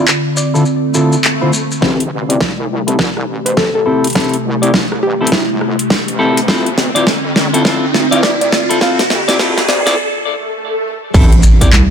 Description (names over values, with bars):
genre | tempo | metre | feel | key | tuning
glitch hop | 103 BPM | 4/4 | swing 62% on 16ths | A minor | A4 = 440 Hz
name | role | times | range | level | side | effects
warbly tape-like pad | sustained chords | 0.0-11.9 s | C3 to G4 | -20 LUFS | equal | chorus, built-in reverb, sidechain pumping
clean electric guitar | stabs | 0.0-11.7 s | D3 to D5 | -17 LUFS | left 2 dB | sidechain pumping, low-pass filter, ping-pong delay
dubstep drum kit | drums | 0.1-11.9 s | crash cymbal, handclaps, hi-hat, rim click, snare drum | -16 LUFS | equal | overdrive
maracas | percussion | 0.1-1.8, 11.1-11.9 s | none | -22 LUFS | left 3 dB | none
woody wave-folded pluck | melody | 0.4-10.2 s | E4 to F5 | -19 LUFS | equal | chorus, ping-pong delay
swell, riser and impact | sound effects | 0.8-11.9 s | none | -20 LUFS | right 1 dB | none
wobble bass | bass | 1.8-11.9 s | G1 to F2 | -19 LUFS | equal | chorus, high-pass filter
electronic kick drum | drums | 1.8-11.7 s | none | -15 LUFS | equal | overdrive, high-pass filter on kick, high-pass filter on room
rubbery square bass | bass | 11.4-11.7 s | A1 | -8 LUFS | equal | none
room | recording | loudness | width
light reverb | high-pass filter | -11 LUFS | side -7 dB against mid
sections
0.0-1.8 A section; 1.8-11.1 B section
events
swell 0.8-1.8, 10.0-11.1; build-up 1.8-11.1; drum fill 1.8-10.0; filter sweep on clean electric guitar 1.8-11.1; filter sweep 1.8-11.1; riser 2.0-10.0; break 10.0-11.1; impact 11.1-11.9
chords
0.0 Dm7; 1.8 Am7; 6.5 Dm7; 11.1 Am7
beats
0.08 0.66 1.25 | 1.83 2.41 2.99 3.58 | 4.16 4.74 5.32 5.91 | 6.49 7.07 7.65 8.23 | 8.82 9.40 9.98 10.56 | 11.15 11.73